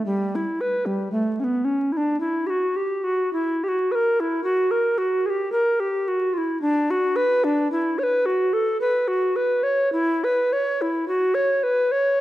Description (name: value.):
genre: classical, baroque-style fantasia for unaccompanied recorder.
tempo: 55 BPM.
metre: 3/4.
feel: uneven beats, rubato.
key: B minor.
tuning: A4 = 440 Hz.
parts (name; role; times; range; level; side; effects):
mellow bass recorder; solo; 0.0-12.2 s; G3 to C#5; -20 LUFS; equal; none.
room: moderate recital hall reverb, RT60 1.7 s.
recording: vinyl crackle.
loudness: -20 LUFS.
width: side -14 dB against mid.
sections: 0.0-12.2 A section.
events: none.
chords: none.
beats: | 0.07 1.13 2.20 | 3.32 4.45 5.53 | 6.61 7.69 8.79 | 9.93 11.08.